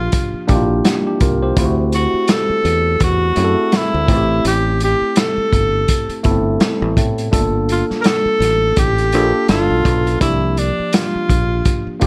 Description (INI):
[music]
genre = lush 1970s-style soul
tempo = 83 BPM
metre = 4/4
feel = swing 58% on 16ths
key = G dorian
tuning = A4 = 441 Hz
[part]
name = breathy tenor saxophone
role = melody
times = 0.0-12.0 s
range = D4 to Bb4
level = -20 LUFS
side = equal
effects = plate reverb
[part]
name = tine electric piano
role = accompaniment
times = 0.0-12.1 s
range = F3 to C5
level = -23 LUFS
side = equal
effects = plate reverb
[part]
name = fingered electric bass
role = bass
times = 0.0-12.1 s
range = G1 to A2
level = -21 LUFS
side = equal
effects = none
[part]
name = vintage drum kit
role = drums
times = 0.1-12.1 s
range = hi-hat, kick drum, snare drum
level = -20 LUFS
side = equal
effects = none
[sound]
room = light reverb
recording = none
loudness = -16 LUFS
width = mono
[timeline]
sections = 0.0-12.1 A section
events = none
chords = 0.0 C7sus4; 1.6 D7; 4.1 Am7; 7.3 Gm9; 9.5 G7; 10.2 C7sus4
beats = 0.12 0.84 | 1.56 2.28 3.00 3.73 | 4.45 5.17 5.89 6.61 | 7.33 8.05 8.77 9.49 | 10.21 10.93 11.65